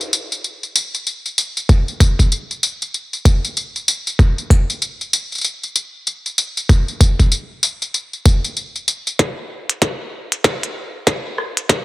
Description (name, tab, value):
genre	glitch hop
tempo	96 BPM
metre	4/4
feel	swing 61% on 16ths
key	none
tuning	none
part	glitchy drum kit	drums	0.0-11.8 s	hi-hat, rim click, snare drum, tambourine	-19 LUFS	left 1 dB	high-pass filter on snare, high-pass filter on hats, high-pass filter on cymbals, high-pass filter on perc, high-pass filter on room
part	electronic kick drum	drums	1.7-11.8 s	none	-13 LUFS	equal	high-pass filter on kick, high-pass filter on room
room	little or no reverb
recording	heavily compressed radio sound, multiband compression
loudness	-16 LUFS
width	side -20 dB against mid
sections	0.0-9.2 A section; 9.2-11.8 B section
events	build-up 9.2-11.8; drum fill 9.2-11.8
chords	none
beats	0.45 1.07 | 1.70 2.32 2.94 3.57 | 4.20 4.82 5.45 6.07 | 6.70 7.32 7.95 8.57 | 9.20 9.82 10.45 11.07 | 11.70